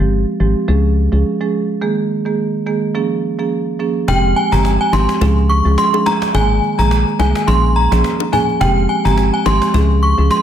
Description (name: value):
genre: dancehall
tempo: 106 BPM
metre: 4/4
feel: swing 56% on 16ths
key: F minor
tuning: A4 = 440 Hz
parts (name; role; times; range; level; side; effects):
- marimba with medium mallets; accompaniment; 0.0-10.4 s; Eb3 to Ab4; -17 LUFS; right 4 dB; low-pass filter
- organ-like FM bass; bass; 0.0-10.3 s; F1 to Db2; -14 LUFS; left 1 dB; none
- synth chime; melody; 4.1-10.4 s; G5 to Db6; -17 LUFS; left 1 dB; ensemble chorus, ping-pong delay
- cajon; drums; 4.1-10.4 s; none; -26 LUFS; left 1 dB; none
- bongos; percussion; 4.1-9.9 s; none; -25 LUFS; left 13 dB; none
room: moderate plate reverb, RT60 1.3 s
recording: dreamy mix soaked in reverb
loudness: -13 LUFS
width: side -9 dB against mid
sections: 0.0-4.1 A section; 4.1-10.4 B section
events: break 1.8-4.1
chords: 0.0 Fmadd9; 0.7 Db; 1.8 Absus2; 3.0 Bbm7; 4.1 Fmadd9; 5.2 Db; 6.3 Absus2; 7.5 Bbm7; 8.6 Fmadd9; 9.7 Db